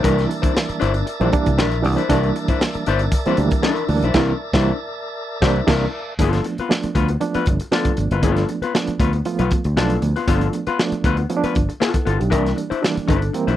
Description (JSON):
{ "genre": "funk", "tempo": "117 BPM", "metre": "4/4", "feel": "straight", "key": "unclear", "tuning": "A4 = 440 Hz", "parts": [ { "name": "vintage hollow-body jazz guitar", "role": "accompaniment", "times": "0.0-13.6 s", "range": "B3 to C5", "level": "-23 LUFS", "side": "left 7 dB", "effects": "none" }, { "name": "tonewheel organ", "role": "sustained chords", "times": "0.0-6.1 s", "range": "Bb4 to A5", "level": "-28 LUFS", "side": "right 1 dB", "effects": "slow rotary speaker, overdrive" }, { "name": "bright reed electric piano", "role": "stabs", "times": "0.0-13.6 s", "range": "Eb3 to Bb4", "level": "-22 LUFS", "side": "right 5 dB", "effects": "overdrive, fast tremolo" }, { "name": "fingered electric bass", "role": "bass", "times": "0.0-13.6 s", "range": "F#1 to D2", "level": "-20 LUFS", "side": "equal", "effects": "none" }, { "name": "crunchy breakbeat drum kit", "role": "drums", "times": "0.0-13.6 s", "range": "crash cymbal, hi-hat, kick drum, snare drum", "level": "-21 LUFS", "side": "equal", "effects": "none" } ], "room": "little or no reverb", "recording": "dry, close 1970s-style studio recording", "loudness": "-17 LUFS", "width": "side -12 dB against mid", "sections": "0.0-6.2 A section; 6.2-13.6 B section", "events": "band accent 4.1-6.2; reed electric piano fill 12.8-13.6", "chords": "0.0 C9; 6.2 G9; 12.3 C9" }